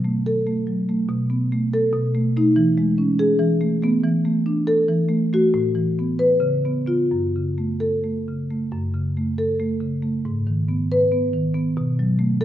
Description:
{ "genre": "classical, contemporary piece for solo marimba", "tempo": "278 BPM (eighths)", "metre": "7/8", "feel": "rubato", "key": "F# dorian", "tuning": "A4 = 445 Hz", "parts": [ { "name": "marimba with soft mallets", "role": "solo", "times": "0.0-12.4 s", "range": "F#2 to B4", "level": "-18 LUFS", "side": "equal", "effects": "none" } ], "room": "wet recital hall reverb, RT60 1.3 s", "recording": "none", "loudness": "-18 LUFS", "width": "side -12 dB against mid", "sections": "0.0-8.7 A section; 8.7-12.4 A section", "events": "none", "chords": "0.0 B5; 1.1 Asus2/B; 1.9 B7; 2.6 E6; 3.4 Esus4; 4.0 E7sus4; 4.9 F#m7/E; 5.5 Asus2; 6.4 C#7; 7.1 F#m; 10.2 G#m; 11.8 B5", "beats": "0.03 0.24 0.45 0.66 0.87 | 1.08 1.29 1.50 1.71 1.92 2.13 2.35 | 2.56 2.77 2.98 3.19 3.40 3.62 3.83 | 4.05 4.26 4.47 4.68 4.90 5.12 5.33 | 5.55 5.76 5.98 6.20 6.42 6.65 6.88 | 7.12 7.35 7.58 7.82 8.04 8.27 8.50 | 8.73 8.95 9.17 9.39 9.60 9.82 10.03 | 10.25 10.47 10.68 10.90 11.11 11.33 11.54 | 11.76 11.98 12.19 12.41" }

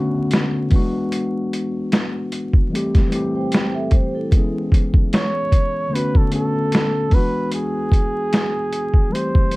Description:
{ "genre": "lo-fi hip hop", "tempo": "75 BPM", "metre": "4/4", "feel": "swing 56% on 16ths", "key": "unclear", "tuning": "A4 = 441 Hz", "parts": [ { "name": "mellow tine electric piano", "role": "accompaniment", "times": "0.0-9.6 s", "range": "D3 to B4", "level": "-22 LUFS", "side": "left 1 dB", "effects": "none" }, { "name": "boom bap sampler-style drum kit", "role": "drums", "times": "0.3-9.6 s", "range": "hi-hat, kick drum, snare drum", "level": "-16 LUFS", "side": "equal", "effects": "none" }, { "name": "vibraphone with soft mallets", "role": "second line", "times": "3.4-4.5 s", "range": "E4 to G5", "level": "-28 LUFS", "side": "right 3 dB", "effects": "tape echo" }, { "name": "breathy flugelhorn", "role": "melody", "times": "5.1-9.6 s", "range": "G#4 to C#5", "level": "-23 LUFS", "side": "right 1 dB", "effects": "none" } ], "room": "moderate studio reverb, RT60 0.6 s", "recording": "dark, warm production, vinyl crackle", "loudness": "-17 LUFS", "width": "side -21 dB against mid", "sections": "0.0-9.6 A section", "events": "none", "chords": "0.0 Bm9; 0.7 E9; 2.7 C6/E; 4.3 C#m7; 5.9 Bm9; 7.1 E9", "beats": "0.32 | 1.12 1.92 2.72 3.52 | 4.32 5.12 5.92 6.72 | 7.52 8.32 9.12" }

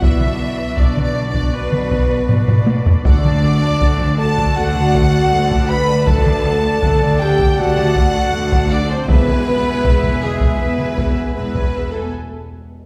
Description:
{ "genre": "cinematic, epic orchestral film score", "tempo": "79 BPM", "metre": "4/4", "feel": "straight", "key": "unclear", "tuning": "A4 = 440 Hz", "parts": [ { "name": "bright symphonic violin section", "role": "melody", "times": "0.0-12.1 s", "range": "G#4 to B5", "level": "-32 LUFS", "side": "equal", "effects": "none" }, { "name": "mellow hollow concert flute", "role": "second line", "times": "0.0-12.1 s", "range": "G#4 to B5", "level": "-29 LUFS", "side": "equal", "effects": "none" }, { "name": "warm symphonic violin section", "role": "second line", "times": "0.0-12.1 s", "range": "G#4 to B5", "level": "-31 LUFS", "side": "equal", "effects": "none" }, { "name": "warm symphonic viola section", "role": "accompaniment", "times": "0.0-12.1 s", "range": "G#4 to A5", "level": "-32 LUFS", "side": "equal", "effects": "none" }, { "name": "dark French horn section", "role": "sustained chords", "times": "0.0-12.1 s", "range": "G#3 to B4", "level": "-24 LUFS", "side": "equal", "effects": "none" }, { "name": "mellow woodwind section", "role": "sustained chords", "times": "0.0-12.1 s", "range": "B3 to E5", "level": "-30 LUFS", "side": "equal", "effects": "none" }, { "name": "mellow trumpet section", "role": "stabs", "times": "0.0-12.1 s", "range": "G#4 to B5", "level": "-29 LUFS", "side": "equal", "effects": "none" }, { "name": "clear symphonic cello section", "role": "bass", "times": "0.0-12.0 s", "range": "D2 to B2", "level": "-26 LUFS", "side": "equal", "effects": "none" }, { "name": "rich symphonic double bass section", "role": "bass", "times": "0.0-12.0 s", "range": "E1 to D2", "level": "-24 LUFS", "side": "equal", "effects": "none" }, { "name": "taiko ensemble", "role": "drums", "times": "0.0-12.1 s", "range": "none", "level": "-20 LUFS", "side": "equal", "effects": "none" }, { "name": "timpani", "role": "percussion", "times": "9.1-10.2 s", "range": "E2", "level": "-31 LUFS", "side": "equal", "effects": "none" } ], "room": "wet scoring stage reverb, RT60 1.8 s", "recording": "heard from further back in the room", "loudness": "-16 LUFS", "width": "mono", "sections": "0.0-12.9 A section", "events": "drum fill 2.3-3.0; break 12.1-12.9", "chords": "0.0 Bm; 3.0 D; 9.1 E", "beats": "| 0.02 0.78 1.54 2.29 | 3.05 3.81 4.56 5.32 | 6.07 6.83 7.58 8.34 | 9.09 9.85 10.60 11.36 | 12.11" }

